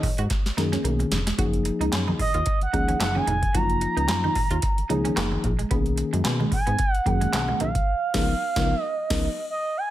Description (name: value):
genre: early-eighties boogie funk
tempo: 111 BPM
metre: 4/4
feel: swing 56% on 16ths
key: F# major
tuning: A4 = 440 Hz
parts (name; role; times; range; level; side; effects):
- expressive synth lead; melody; 0.0-9.9 s; D#5 to A#5; -27 LUFS; right 3 dB; chorus
- mellow tine electric piano; accompaniment; 0.0-9.3 s; D#3 to A#4; -28 LUFS; left 4 dB; none
- electric guitar at the edge of break-up; riff; 0.0-7.7 s; G#3 to F#4; -32 LUFS; right 6 dB; analog chorus
- booming analog drum machine; drums; 0.0-9.3 s; crash cymbal, handclaps, hi-hat, kick drum, snare drum; -26 LUFS; equal; overdrive, gated reverb
- congas; percussion; 0.0-7.7 s; none; -34 LUFS; right 1 dB; none
- chorused synth bass; bass; 0.2-9.3 s; E#1 to B2; -26 LUFS; equal; none
room: digital ambience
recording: none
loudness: -21 LUFS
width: side -13 dB against mid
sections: 0.0-9.9 A section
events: drum fill 0.3-1.4; band accent 7.9-9.9; tine electric piano fill 9.2-9.9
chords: 0.0 Bmaj13; 1.4 F#maj13; 5.7 Bmaj13; 7.9 C#13